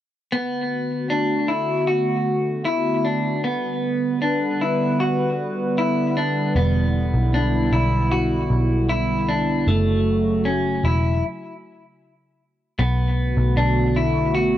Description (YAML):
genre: dream pop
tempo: 77 BPM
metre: 4/4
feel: straight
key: B minor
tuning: A4 = 440 Hz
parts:
  - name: hollow soft pad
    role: sustained chords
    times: 0.7-14.6 s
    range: C#3 to B4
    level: -23 LUFS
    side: right 1 dB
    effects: chorus
  - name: clean electric guitar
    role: arpeggios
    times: 0.3-14.6 s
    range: A3 to F#4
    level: -23 LUFS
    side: left 2 dB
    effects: wide subtle chorus, tape echo
  - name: vintage muted picked electric bass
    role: bass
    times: 6.6-14.6 s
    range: E1 to B1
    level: -21 LUFS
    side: equal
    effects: none
room: light reverb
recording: dry, gritty hardware recording, cassette tape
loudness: -18 LUFS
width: side -12 dB against mid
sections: 0.3-12.8 A section; 12.8-14.6 B section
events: stop 11.2-12.8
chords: 0.3 Bm7; 3.4 G; 6.6 Em7; 9.7 F#m; 12.8 Bm7